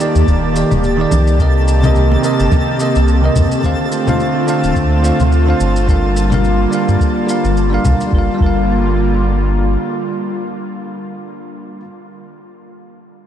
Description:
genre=sunset chillout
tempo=107 BPM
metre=4/4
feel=swing 56% on 16ths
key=G minor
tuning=A4 = 443 Hz
part: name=bell-like tine electric piano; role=accompaniment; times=0.0-11.9 s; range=C3 to F5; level=-19 LUFS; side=right 1 dB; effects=auto-pan, analog delay
part: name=airy breathy pad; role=sustained chords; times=0.0-11.1 s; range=D3 to D5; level=-18 LUFS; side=equal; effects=chorus
part: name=shaker and congas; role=drums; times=0.0-8.1 s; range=none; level=-23 LUFS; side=left 2 dB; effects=none
part: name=twinkling granular texture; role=texture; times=0.0-8.1 s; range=A4 to A5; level=-26 LUFS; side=equal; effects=built-in reverb
part: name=round analog bass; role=bass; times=0.2-9.8 s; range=D1 to G2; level=-14 LUFS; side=equal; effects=none
part: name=electronic kick drum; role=drums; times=0.3-8.6 s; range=none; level=-16 LUFS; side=equal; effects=none
part: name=congas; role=percussion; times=1.1-2.6 s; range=none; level=-27 LUFS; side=right 4 dB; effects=none
room=moderate huge ambient reverb, RT60 8.8 s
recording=dreamy mix soaked in reverb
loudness=-12 LUFS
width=side -10 dB against mid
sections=0.0-8.1 A section; 8.1-10.4 B section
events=none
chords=0.0 Ebmaj7; 1.4 Cm7; 3.6 Dm7; 5.9 Gm7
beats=0.28 0.84 | 1.40 1.96 2.52 3.08 | 3.64 4.20 4.76 5.32 | 5.88 6.44 7.00 7.57 | 8.13 8.69 9.25 9.81

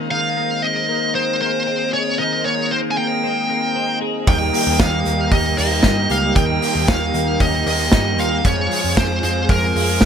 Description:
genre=jangly indie pop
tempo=115 BPM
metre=4/4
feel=straight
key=unclear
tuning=A4 = 444 Hz
part: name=string machine, cellos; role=sustained chords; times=0.0-10.1 s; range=G4 to C6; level=-28 LUFS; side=right 1 dB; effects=phaser, ensemble chorus
part: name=twelve-string electric guitar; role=arpeggios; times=0.0-10.1 s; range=Eb3 to Ab4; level=-24 LUFS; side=left 4 dB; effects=wide subtle chorus
part: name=high-gain lead guitar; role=melody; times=0.1-10.1 s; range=Bb4 to Ab5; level=-20 LUFS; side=right 1 dB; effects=distortion
part: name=combo organ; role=accompaniment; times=4.3-10.1 s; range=G3 to Ab4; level=-26 LUFS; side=right 4 dB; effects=none
part: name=raw garage guitar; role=accompaniment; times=4.3-10.1 s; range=Eb3 to Ab4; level=-27 LUFS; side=right 4 dB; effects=overdrive
part: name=vintage muted picked electric bass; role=bass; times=4.3-10.1 s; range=Db2 to Ab2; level=-22 LUFS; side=equal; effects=none
part: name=loose indie drum kit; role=drums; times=4.3-10.1 s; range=hi-hat, kick drum, snare drum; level=-18 LUFS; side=right 1 dB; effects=none
room=light reverb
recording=none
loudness=-16 LUFS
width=side -8 dB against mid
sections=0.0-10.1 A section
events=none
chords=0.0 Abadd9; 4.3 Eb; 8.5 Fm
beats=| 0.10 0.63 1.15 1.67 | 2.19 2.71 3.23 3.75 | 4.28 4.80 5.32 5.84 | 6.36 6.88 7.41 7.93 | 8.45 8.97 9.49 10.02

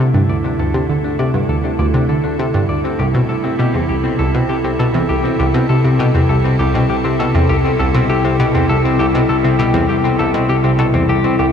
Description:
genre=ambient, sequencer-driven space music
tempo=100 BPM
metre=4/4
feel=straight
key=unclear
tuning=A4 = 440 Hz
part: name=evolving wavetable pad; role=sustained chords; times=0.0-11.5 s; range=C3 to A4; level=-17 LUFS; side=equal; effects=chorus, built-in reverb
part: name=semi-hollow electric guitar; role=arpeggios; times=0.0-11.5 s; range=C4 to D5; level=-22 LUFS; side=left 2 dB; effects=auto-pan, ping-pong delay
part: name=analog pluck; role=riff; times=0.0-11.5 s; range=C2 to D3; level=-16 LUFS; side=equal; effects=chorus, ping-pong delay
part: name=fat analog bass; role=bass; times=0.0-11.5 s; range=C2 to D2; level=-27 LUFS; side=right 1 dB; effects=none
room=wet cathedral reverb, RT60 5.5 s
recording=in a vast, echoing space, cassette tape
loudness=-13 LUFS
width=side -7 dB against mid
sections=0.0-11.5 A section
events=fade-in on clean electric guitar 0.0-11.5; fade-in on ambient pad 0.0-11.5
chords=0.0 Dsus2; 2.8 C6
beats=| 0.44 1.04 1.64 2.24 | 2.84 3.44 4.04 4.64 | 5.24 5.84 6.44 7.04 | 7.64 8.24 8.84 9.44 | 10.04 10.64 11.24

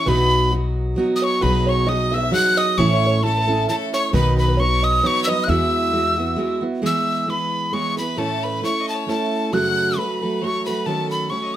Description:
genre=celtic folk, Celtic waltz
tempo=134 BPM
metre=3/4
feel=swing 55% on 8ths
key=E major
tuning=A4 = 441 Hz
part: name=breathy tin whistle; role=melody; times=0.0-11.6 s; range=A5 to F#6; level=-21 LUFS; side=equal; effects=none
part: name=bright fiddle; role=second line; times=0.0-11.6 s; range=G#4 to F#5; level=-30 LUFS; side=left 7 dB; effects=none
part: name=open-back banjo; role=second line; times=0.0-6.6 s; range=A4 to F#5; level=-29 LUFS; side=right 2 dB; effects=none
part: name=picked steel-string acoustic guitar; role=accompaniment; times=0.0-11.6 s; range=F#2 to B4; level=-22 LUFS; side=right 2 dB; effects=none
part: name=upright bass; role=bass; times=0.1-6.3 s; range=A1 to E2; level=-21 LUFS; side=left 1 dB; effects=none
room=moderate studio reverb, RT60 0.6 s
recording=none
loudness=-17 LUFS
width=side -12 dB against mid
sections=0.0-6.8 A section; 6.8-11.6 B section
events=none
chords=0.1 B; 1.4 B6; 2.8 A; 4.1 B; 5.5 Eadd9; 6.8 E; 8.2 A; 9.5 F#m; 10.9 D#m7b5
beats=| 0.07 0.52 0.97 | 1.43 1.88 2.33 | 2.78 3.23 3.68 | 4.13 4.58 5.03 | 5.48 5.93 6.38 | 6.83 7.28 7.73 | 8.18 8.63 9.07 | 9.52 9.97 10.42 | 10.87 11.31

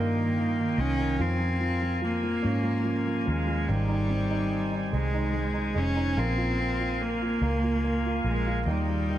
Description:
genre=six-eight pop ballad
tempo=48 BPM (dotted quarters)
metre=6/8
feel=straight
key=unclear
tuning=A4 = 439 Hz
part: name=warm cello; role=melody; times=0.0-9.2 s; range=G3 to Db4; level=-29 LUFS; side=equal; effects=analog delay
part: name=dark upright piano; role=accompaniment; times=0.0-9.2 s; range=Eb3 to F4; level=-32 LUFS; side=right 3 dB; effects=analog delay
part: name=percussive tonewheel organ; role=sustained chords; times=0.0-9.2 s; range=Eb4 to Ab5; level=-36 LUFS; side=left 1 dB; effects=slow rotary speaker
part: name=vintage muted fingered electric bass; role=bass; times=0.0-9.2 s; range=F1 to Ab2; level=-29 LUFS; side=equal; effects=none
room=light reverb, small room ambience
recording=echo-heavy mix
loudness=-25 LUFS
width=side -12 dB against mid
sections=0.0-9.2 A section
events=none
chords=0.0 Ebadd9; 1.2 Db6/F; 3.7 Ab; 6.2 Bbm7; 8.7 Ebadd9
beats=| 1.20 2.44 | 3.69 4.93 | 6.17 7.42 | 8.66

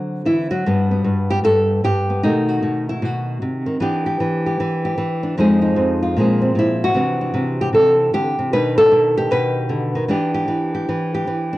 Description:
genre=solo jazz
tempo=152 BPM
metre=4/4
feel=swing 64% on 8ths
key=G major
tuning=A4 = 440 Hz
part: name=nylon-string guitar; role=solo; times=0.0-11.6 s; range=F2 to B4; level=-16 LUFS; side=equal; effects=cassette tape
room=moderate spring reverb, RT60 1.9 s, small room ambience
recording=home recording on cassette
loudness=-16 LUFS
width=side -17 dB against mid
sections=0.6-11.6 A section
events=none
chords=0.0 D7; 0.6 G; 2.2 B7b9; 3.8 Em7; 5.4 Fm7; 6.2 Bbsus2; 6.9 Cmaj9; 8.5 B7alt; 10.1 Em7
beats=0.26 | 0.65 1.04 1.43 1.83 | 2.22 2.61 3.01 3.40 | 3.79 4.19 4.58 4.97 | 5.37 5.76 6.15 6.54 | 6.94 7.33 7.73 8.12 | 8.51 8.91 9.30 9.69 | 10.09 10.48 10.87 11.27

